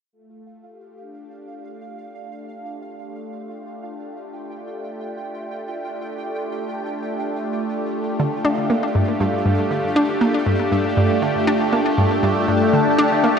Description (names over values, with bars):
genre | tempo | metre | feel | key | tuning
ambient, sequencer-driven space music | 119 BPM | 4/4 | straight | unclear | A4 = 440 Hz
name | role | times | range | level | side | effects
phased analog pad | sustained chords | 0.1-13.4 s | A3 to G4 | -22 LUFS | equal | phaser, chorus
pulsing gated texture | texture | 0.1-13.4 s | F4 to A5 | -31 LUFS | right 1 dB | chorus, built-in reverb
analog pluck | riff | 8.2-13.4 s | G2 to D4 | -20 LUFS | equal | chorus, ping-pong delay
room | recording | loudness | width
wet lush hall reverb, RT60 2.6 s | dreamy mix soaked in reverb | -18 LUFS | side -7 dB against mid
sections
0.1-13.4 A section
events
fade-in on analog synth pad 0.1-13.4; fade-in on synth texture 0.1-13.4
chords
0.1 Gsus2